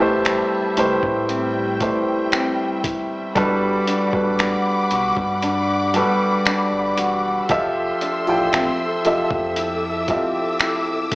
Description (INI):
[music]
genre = contemporary R&B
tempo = 58 BPM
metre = 4/4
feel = straight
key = G major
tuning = A4 = 440 Hz
[part]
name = warm grand piano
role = accompaniment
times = 0.0-11.2 s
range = F3 to G5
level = -20 LUFS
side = equal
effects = none
[part]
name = warm studio string section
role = sustained chords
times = 0.0-11.2 s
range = G3 to E6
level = -25 LUFS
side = left 1 dB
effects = sidechain pumping
[part]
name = fingerpicked old ladder-braced acoustic guitar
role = arpeggios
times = 0.0-11.2 s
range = A2 to A4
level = -25 LUFS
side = left 1 dB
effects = none
[part]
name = sub bass with octave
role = bass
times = 0.0-10.2 s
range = E1 to A2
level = -32 LUFS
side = equal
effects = none
[part]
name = dusty soul sampler-style drum kit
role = drums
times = 0.2-11.2 s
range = finger snaps, hi-hat, kick drum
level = -23 LUFS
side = equal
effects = vintage 12-bit sampler grit
[sound]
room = light reverb, studio reverb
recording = played on a big sound system in a bare room, stone room reverb, small speaker sound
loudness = -18 LUFS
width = side -22 dB against mid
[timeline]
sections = 0.0-11.2 A section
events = none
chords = 0.0 Am7; 3.4 Gmaj7; 7.5 Fmaj7